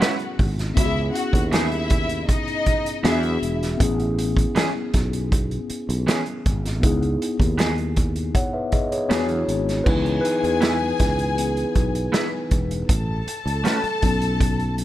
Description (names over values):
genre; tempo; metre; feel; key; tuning
lush 1970s-style soul; 79 BPM; 4/4; straight; C# minor; A4 = 441 Hz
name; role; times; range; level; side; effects
warm studio string section; second line; 0.0-3.6, 9.9-14.8 s; D#4 to A5; -27 LUFS; left 2 dB; none
mellow tine electric piano; accompaniment; 0.0-14.8 s; E3 to F#5; -25 LUFS; left 2 dB; slow stereo tremolo
electric guitar through a small old amp; riff; 0.0-13.8 s; E3 to B4; -26 LUFS; right 2 dB; none
vintage drum kit; drums; 0.0-14.8 s; crash cymbal, hi-hat, kick drum, snare drum; -23 LUFS; right 1 dB; none
sustaining fretless electric bass; bass; 0.4-14.8 s; E1 to E2; -25 LUFS; equal; none
room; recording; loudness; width
small room ambience; none; -19 LUFS; side -14 dB against mid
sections
0.0-9.9 A section; 9.9-14.8 B section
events
tine electric piano solo 9.9-14.8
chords
0.0 Amaj9 (rootless); 0.8 C#m9; 3.0 E7; 3.8 Amaj9; 6.8 C#m9; 9.1 E7; 9.9 C#m7; 12.9 A69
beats
0.01 | 0.77 1.53 2.29 3.04 | 3.80 4.56 5.32 6.08 | 6.83 7.59 8.35 9.11 | 9.86 10.62 11.38 12.14 | 12.89 13.65 14.41